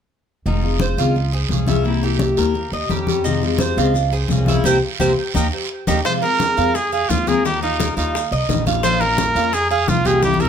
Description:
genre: latin, Cuban son and guajira.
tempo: 172 BPM.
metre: 4/4.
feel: straight.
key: F minor.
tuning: A4 = 435 Hz.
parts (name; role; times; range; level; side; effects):
picked steel-string acoustic guitar; accompaniment; 0.5-10.5 s; C3 to G4; -22 LUFS; left 7 dB; none.
Cuban tres; arpeggios; 0.5-10.5 s; Eb4 to F5; -22 LUFS; right 3 dB; tape echo.
upright bass; bass; 0.5-10.5 s; F1 to F2; -22 LUFS; right 1 dB; none.
congas; percussion; 0.5-10.5 s; none; -25 LUFS; left 3 dB; none.
guiro; percussion; 0.5-10.5 s; none; -30 LUFS; right 8 dB; none.
maracas; percussion; 3.2-10.5 s; none; -32 LUFS; left 4 dB; none.
clear trumpet; melody; 6.1-10.5 s; Eb4 to C5; -19 LUFS; right 2 dB; none.
bongos; percussion; 6.1-10.4 s; none; -30 LUFS; left 6 dB; none.
room: moderate studio reverb, RT60 0.6 s.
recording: none.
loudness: -16 LUFS.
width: side -8 dB against mid.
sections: 0.5-6.0 A section; 6.0-10.5 B section.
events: band accent 4.7-6.0; drum fill 5.0-6.0, 10.2.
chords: 0.5 Fm7; 1.2 Db; 1.9 C7; 2.6 Eb7; 3.3 Fm7; 4.0 Db; 4.7 C7; 5.4 Eb7; 6.0 Fm; 7.4 Ebadd9; 8.8 Bbm.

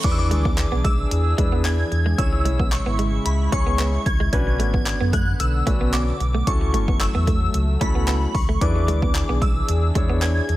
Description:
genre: dance-pop.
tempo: 112 BPM.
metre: 4/4.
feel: straight.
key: unclear.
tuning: A4 = 437 Hz.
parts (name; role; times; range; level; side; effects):
shimmering bell with halo; melody; 0.0-10.6 s; B5 to G#6; -28 LUFS; equal; ensemble chorus, tape echo.
warm concert grand piano; accompaniment; 0.0-10.4 s; C#4 to C#5; -29 LUFS; left 3 dB; sidechain pumping.
warm analog pad; sustained chords; 0.0-10.6 s; C#3 to G#4; -30 LUFS; equal; chorus, sidechain pumping.
sub bass with octave; bass; 0.0-10.6 s; F#1 to F#2; -22 LUFS; equal; sidechain pumping.
deep house drum kit; drums; 0.0-10.6 s; crash cymbal, handclaps, hi-hat, kick drum; -22 LUFS; equal; none.
direct-recorded clean electric guitar; riff; 0.2-10.5 s; G#3 to B3; -30 LUFS; right 4 dB; wide subtle chorus.
room: little or no reverb.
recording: none.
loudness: -18 LUFS.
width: side -16 dB against mid.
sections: 0.0-10.6 A section.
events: none.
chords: 0.0 E7; 2.2 C#m; 4.3 Bmadd9; 6.5 A6; 8.6 E7.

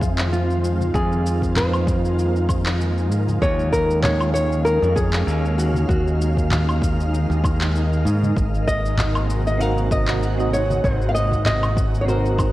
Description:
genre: sunset chillout.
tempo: 97 BPM.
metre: 4/4.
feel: swing 55% on 16ths.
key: unclear.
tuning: A4 = 440 Hz.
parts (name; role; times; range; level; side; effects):
nylon-string guitar; melody; 0.0-12.5 s; F4 to F5; -24 LUFS; equal; tape echo.
shimmering ambient pad; sustained chords; 0.0-12.5 s; C3 to F5; -26 LUFS; equal; chorus, built-in reverb.
modern bright fingered electric bass; bass; 0.0-12.5 s; Ab1 to Ab2; -21 LUFS; equal; tube saturation.
electronic kick drum; drums; 0.0-12.5 s; none; -24 LUFS; equal; overdrive, small room ambience.
electronic shaker, handclaps and woodblock; drums; 0.0-12.5 s; none; -29 LUFS; equal; overdrive, small room ambience.
congas; percussion; 0.8-11.6 s; none; -26 LUFS; left 1 dB; none.
soft electric-piano-like synth keys; accompaniment; 9.6-12.5 s; C4 to Eb5; -25 LUFS; right 2 dB; chorus, auto-pan.
room: light reverb.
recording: worn, warbling old tape, cassette tape, warbly pitch drift.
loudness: -18 LUFS.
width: side -16 dB against mid.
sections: 0.0-12.5 A section.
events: none.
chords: 0.0 Fm7; 3.4 Ebm11; 8.4 Ab7.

